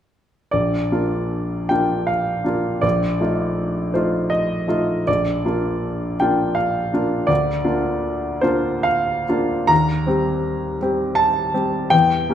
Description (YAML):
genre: classical, romantic character piece for solo piano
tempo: 69-83 BPM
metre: 3/4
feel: rubato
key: Bb major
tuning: A4 = 440 Hz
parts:
  - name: clear grand piano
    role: solo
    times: 0.5-12.3 s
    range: Bb1 to Bb5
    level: -18 LUFS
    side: equal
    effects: none
room: wet recital hall reverb, RT60 1.7 s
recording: none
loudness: -18 LUFS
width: side -10 dB against mid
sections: 0.5-12.3 A section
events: none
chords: 0.5 Bb; 2.8 F7/Bb; 5.1 Bb; 7.3 Bb/D; 9.7 Cm7/Eb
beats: | 0.51 1.31 2.08 | 2.84 3.59 4.32 | 5.08 5.82 6.57 | 7.30 8.04 8.87 | 9.71 10.46 11.20 | 11.93